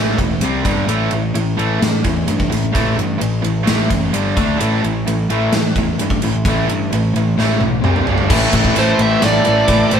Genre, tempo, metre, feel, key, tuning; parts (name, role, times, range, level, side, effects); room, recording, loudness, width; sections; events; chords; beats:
hard rock; 130 BPM; 4/4; straight; A minor; A4 = 440 Hz
overdriven semi-hollow guitar; riff; 0.0-10.0 s; G2 to D4; -20 LUFS; left 5 dB
tight distorted guitar; riff; 0.0-10.0 s; G2 to D4; -20 LUFS; right 6 dB; distortion
fuzz picked electric bass; bass; 0.0-10.0 s; E1 to A2; -20 LUFS; equal; overdrive
gated 80s drum kit; drums; 0.2-10.0 s; crash cymbal, kick drum, ride cymbal, snare drum, toms; -20 LUFS; equal
mellow tonewheel organ; sustained chords; 8.3-10.0 s; A3 to B4; -28 LUFS; right 2 dB
distorted electric guitar; riff; 8.3-10.0 s; A2 to A3; -25 LUFS; right 1 dB
bluesy overdriven lead guitar; melody; 8.8-10.0 s; C5 to E5; -16 LUFS; equal; distortion
octave-fuzz lead guitar; second line; 8.8-10.0 s; G4 to C5; -25 LUFS; right 3 dB; distortion
moderate stone room reverb, RT60 1.3 s; band playing live in one room; -14 LUFS; side -8 dB against mid
0.0-8.3 A section; 8.3-10.0 B section
drum fill 7.4-8.3
0.4 C5; 0.7 G5; 0.9 A5; 4.1 G5; 4.4 D5; 4.6 A5; 7.8 C5; 8.1 G5; 8.3 A5
0.43 | 0.90 1.36 1.82 2.29 | 2.75 3.21 3.67 4.14 | 4.60 5.06 5.53 5.99 | 6.45 6.92 7.38 7.84 | 8.30 8.76 9.22 9.69